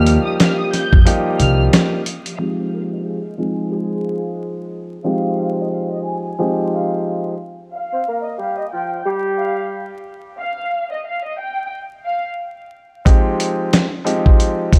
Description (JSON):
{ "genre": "hip hop, boom-bap hip-hop", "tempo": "90 BPM", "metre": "4/4", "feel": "swing 59% on 16ths", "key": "F minor", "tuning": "A4 = 440 Hz", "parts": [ { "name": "warm studio violin section", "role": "melody", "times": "0.0-12.2 s", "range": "Eb5 to G6", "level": "-28 LUFS", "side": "equal", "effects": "high-pass filter, low-pass filter, tape echo" }, { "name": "warm grand piano", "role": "accompaniment", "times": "0.0-7.3, 13.1-14.8 s", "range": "F3 to Ab4", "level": "-22 LUFS", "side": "equal", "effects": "cassette tape, high-pass filter, low-pass filter" }, { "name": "warm studio string section", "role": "sustained chords", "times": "0.0-2.4 s", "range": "G4 to Eb6", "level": "-36 LUFS", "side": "equal", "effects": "none" }, { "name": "upright bass", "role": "bass", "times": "0.0-1.7 s", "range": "C2 to F2", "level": "-17 LUFS", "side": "equal", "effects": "none" }, { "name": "dusty soul sampler-style drum kit", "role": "drums", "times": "0.1-2.4, 13.1-14.8 s", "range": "hi-hat, kick drum, snare drum", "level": "-16 LUFS", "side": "equal", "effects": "none" }, { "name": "dark horn section", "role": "stabs", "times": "2.6-9.9 s", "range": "F3 to C5", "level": "-27 LUFS", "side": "equal", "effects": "high-pass filter, low-pass filter, tape echo" } ], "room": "light reverb, studio ambience", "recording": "vinyl crackle", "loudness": "-19 LUFS", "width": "mono", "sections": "0.0-2.4 A section; 2.4-13.1 B section; 13.1-14.8 C section", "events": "break 1.1-2.4; filter sweep 2.4-13.1", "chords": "0.0 Ebadd9; 2.4 Fm7; 7.7 Fsus2; 13.1 Fm7" }